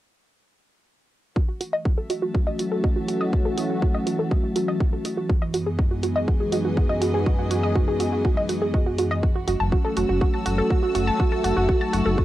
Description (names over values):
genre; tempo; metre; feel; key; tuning
melodic techno; 122 BPM; 4/4; straight; F# dorian; A4 = 440 Hz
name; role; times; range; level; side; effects
sweeping resonant pad; sustained chords; 1.4-12.2 s; F#2 to G#4; -26 LUFS; left 1 dB; chorus, sidechain pumping, cassette tape
analog pluck; arpeggios; 1.4-12.2 s; F#4 to A5; -26 LUFS; right 2 dB; chorus, sidechain pumping, cassette tape, tape echo
electronic kick drum; drums; 1.4-12.2 s; none; -22 LUFS; equal; cassette tape
clear studio string section; texture; 1.4-12.2 s; E3 to E6; -37 LUFS; equal; sidechain pumping, cassette tape
electronic hi-hat; drums; 1.6-12.0 s; none; -34 LUFS; equal; cassette tape
round analog bass; bass; 9.5-12.2 s; F#1; -24 LUFS; equal; sidechain pumping
room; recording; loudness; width
little or no reverb; home recording on cassette; -20 LUFS; side -14 dB against mid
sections
1.4-12.2 A section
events
fade-in on string section 1.4-12.2; filter sweep on synth pluck 1.4-12.2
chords
1.4 F#m7; 5.3 Emaj7/F#; 9.2 F#m7